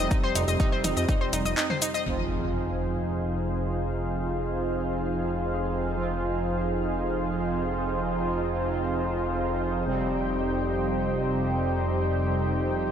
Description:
melodic techno; free time; F minor; A4 = 438 Hz
lush unison pad; sustained chords; 0.0-12.9 s; C3 to G5; -31 LUFS; left 2 dB; chorus, sidechain pumping
analog pluck; arpeggios; 0.0-2.0 s; Eb4 to Eb5; -29 LUFS; left 1 dB; chorus, cassette tape, sidechain pumping, ping-pong delay
analog synth brass; stabs; 0.0-12.9 s; C3 to F4; -30 LUFS; right 3 dB; chorus, cassette tape, sidechain pumping, ping-pong delay
fat analog bass; bass; 0.0-12.9 s; F1 to F2; -32 LUFS; equal; sidechain pumping
analog drone; drone; 0.0-12.9 s; F2; -35 LUFS; equal; chorus, sidechain pumping
electronic kick drum; drums; 0.1-1.2 s; -25 LUFS; equal
house drum kit; drums; 0.1-2.0 s; handclaps, hi-hat, shaker, toms; -29 LUFS; left 2 dB
impact; sound effects; 2.1-4.0 s; -36 LUFS; equal
light reverb; -25 LUFS; side -8 dB against mid
0.0-2.1 A section; 2.1-12.9 B section
impact 2.1-4.0
0.0 Cm/F; 2.1 Fm7; 9.9 Cm/F

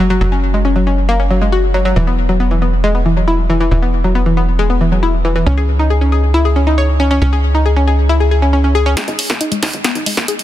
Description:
uplifting trance; 137 BPM; 4/4; straight; A4 = 442 Hz
analog pluck; arpeggios; 0.0-10.3 s; E3 to C#5; -15 LUFS; left 2 dB; chorus, ping-pong delay
tight sequencer bass; bass; 0.0-10.3 s; E1 to D#2; -14 LUFS; equal; high-pass filter
big-room dance drum kit; drums; 9.0-10.4 s; hi-hat, snare drum; -17 LUFS; right 1 dB; high-pass filter on snare, high-pass filter on hats
little or no reverb; dense, heavily limited modern master; -11 LUFS; side -13 dB against mid
0.0-9.0 A section; 9.0-10.4 B section
build-up 9.0-10.4; drum fill 9.0-10.4; filter sweep on synth arpeggio sound 9.0-10.4
0.0 F#5; 2.0 E5; 5.5 C#5; 9.0 G#5

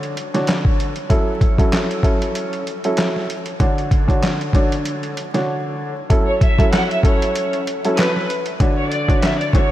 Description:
hip hop, boom-bap hip-hop; 96 BPM; 4/4; swing 56% on 16ths; F# minor; A4 = 440 Hz
warm upright piano; accompaniment; 0.0-9.7 s; D3 to C#5; -21 LUFS; equal; cassette tape, high-pass filter, low-pass filter
lo-fi sampler-style drum kit; drums; 0.0-9.7 s; handclaps, hi-hat, kick drum, snare drum; -18 LUFS; equal; overdrive
rich studio violin section; melody; 6.3-9.7 s; B4 to F#5; -22 LUFS; equal; high-pass filter, low-pass filter, ping-pong delay
moderate huge ambient reverb, RT60 7.5 s; dreamy mix soaked in reverb, vinyl crackle; -16 LUFS; side -13 dB against mid
0.0-6.1 A section; 6.1-9.7 B section
0.0 Dmaj7; 1.1 F#m7; 3.6 Dmaj7; 6.1 F#m7; 8.6 Dmaj7

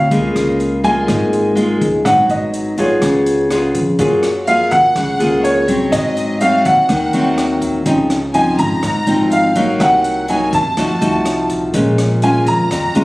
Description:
bossa nova; 124 BPM; 4/4; straight; Db major; A4 = 441 Hz
warm baby grand piano; melody; 0.0-13.0 s; Db5 to Bb5; -17 LUFS; equal
nylon-string guitar; accompaniment; 0.0-13.0 s; F2 to Ab4; -15 LUFS; equal
upright bass; bass; 0.0-13.0 s; Ab1 to Ab2; -21 LUFS; equal
compact cocktail drum kit; drums; 0.1-13.0 s; hi-hat, kick drum, rim click; -27 LUFS; equal
clear symphonic violin section; second line; 4.5-13.0 s; Db5 to Bb5; -23 LUFS; equal
light reverb; recorded on a phone in the room, studio reverb, compression; -12 LUFS; side -20 dB against mid
0.0-4.0 A section; 4.0-13.0 B section
0.1 Db6; 2.0 Abm7; 3.0 Db7; 4.0 Gbmaj9; 5.9 Ab7b9; 7.9 Dbmaj9; 9.8 Cm7b5; 10.8 F7b9; 11.7 Bbm7

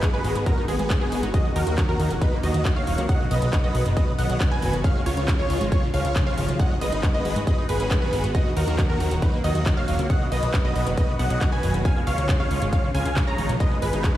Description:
uplifting trance; 137 BPM; 4/4; straight; Eb minor; A4 = 440 Hz
big supersaw lead; melody; 0.0-14.2 s; Cb4 to Bb5; -29 LUFS; equal; sidechain pumping, dub echo
wide unison pluck; second line; 0.0-14.2 s; Ab4 to Bb5; -33 LUFS; equal; sidechain pumping, dub echo
lush unison pad; sustained chords; 0.0-14.2 s; Db3 to Gb4; -31 LUFS; equal; chorus, sidechain pumping
liquid acid bass; arpeggios; 0.0-14.2 s; B2 to Eb4; -32 LUFS; right 2 dB; chorus, sidechain pumping, dub echo
big-room dance drum kit; drums; 0.0-14.1 s; handclaps, hi-hat; -34 LUFS; equal; sidechain pumping on hats
electronic kick drum; drums; 0.0-14.1 s; -22 LUFS; equal
plucky analog bass; bass; 0.1-14.2 s; Eb1 to Ab2; -25 LUFS; equal; sidechain pumping
digital ambience; played on a big sound system in a bare room, stone room reverb; -20 LUFS; side -13 dB against mid
0.0-14.2 A section
0.0 Abm7; 1.3 Ebm; 3.1 B; 4.8 Db; 6.6 Abm7; 8.3 Ebm; 10.1 B; 11.8 Db; 13.6 Abm7

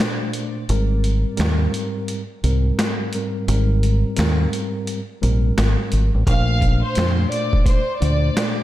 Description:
hip hop, boom-bap hip-hop; 86 BPM; 4/4; swing 62% on 16ths; A4 = 440 Hz
mellow tine electric piano; accompaniment; 0.0-8.6 s; Ab2 to C5; -24 LUFS; equal; medium stereo tremolo, cassette tape, high-pass filter, low-pass filter
boom bap sampler-style drum kit; drums; 0.0-8.6 s; hi-hat, kick drum, snare drum; -22 LUFS; equal
deep dub fingered electric bass; bass; 0.7-8.3 s; Ab1 to F2; -18 LUFS; equal
warm studio violin section; melody; 6.3-8.5 s; C5 to F6; -26 LUFS; left 1 dB; high-pass filter, low-pass filter, diffuse ambient delay
light reverb; -17 LUFS; side -14 dB against mid
0.0-8.6 A section
break 0.0-6.3
0.0 Bbmaj9; 0.7 Abmaj9; 6.3 Bbmaj9

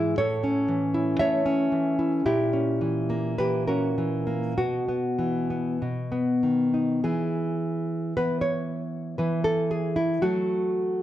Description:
romantic piece for solo classical guitar; 48-61 BPM; 2/4; rubato; E major; A4 = 441 Hz
nylon-string guitar; solo; 0.0-11.0 s; G#2 to E5; -23 LUFS; equal
light reverb; dark, warm production; -23 LUFS; side -13 dB against mid
0.0-7.0 A section; 7.0-11.0 B section
0.2 A; 2.3 A#dim7; 4.6 Bsus4; 5.8 B; 7.0 E; 9.2 F#m7/E

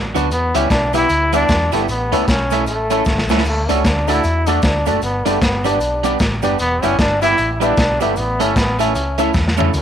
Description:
ska; 153 BPM; 4/4; swing 60% on 8ths; A4 = 440 Hz
hollow-body short-scale fingered electric bass; bass; 0.0-9.8 s; E1 to E2; -22 LUFS; equal
electric guitar at the edge of break-up; accompaniment; 0.1-9.7 s; F#3 to A4; -21 LUFS; right 10 dB; tape echo
warm upright piano; stabs; 0.1-9.7 s; C#4 to E5; -23 LUFS; left 11 dB
crunchy breakbeat drum kit; drums; 0.2-9.8 s; hi-hat, kick drum, snare drum, splash cymbal, toms; -20 LUFS; equal
cabasa; percussion; 0.2-9.8 s; -38 LUFS; left 16 dB
brilliant trombone; melody; 0.3-9.8 s; F#2 to E4; -19 LUFS; equal
moderate spring reverb, RT60 1.8 s, small room ambience; 1960s-style stereo with parts hard left and right; -14 LUFS; side -9 dB against mid
0.0-9.7 A section
drum fill 3.1-3.5, 9.3-9.7
0.3 Em; 1.9 A; 3.5 D; 5.0 G; 6.6 Em; 8.2 A

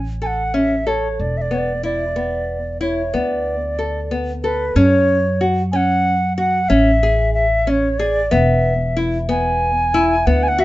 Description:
contemporary instrumental, chamber music in an uneven meter; 185 BPM (eighths); 11/8; straight; A4 = 440 Hz
upright bass; bass; 0.0-10.6 s; E1 to F#2; -21 LUFS; equal
wooden flute; melody; 0.2-10.6 s; B4 to G#5; -19 LUFS; equal
nylon-string guitar; arpeggios; 0.2-10.6 s; B3 to A4; -20 LUFS; left 1 dB
moderate studio reverb, RT60 0.7 s; nothing above 7.9 kHz; -15 LUFS; side -17 dB against mid
0.0-4.8 A section; 4.8-10.6 A section
0.0 A; 1.2 E5; 3.1 D5; 4.8 F#5; 6.7 Amaj7; 8.3 E5

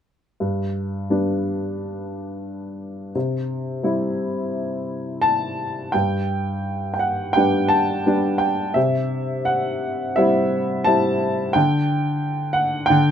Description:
classical, lyrical solo piano; 86 BPM; 4/4; rubato; G major; A4 = 440 Hz
warm upright piano; solo; 0.4-13.1 s; G2 to A5; -19 LUFS; equal
light reverb; close, detailed microphones; -19 LUFS; side -8 dB against mid
0.4-5.9 A section; 5.9-13.1 B section
0.4 G; 3.2 C; 5.9 G; 8.8 C; 11.6 N.C.

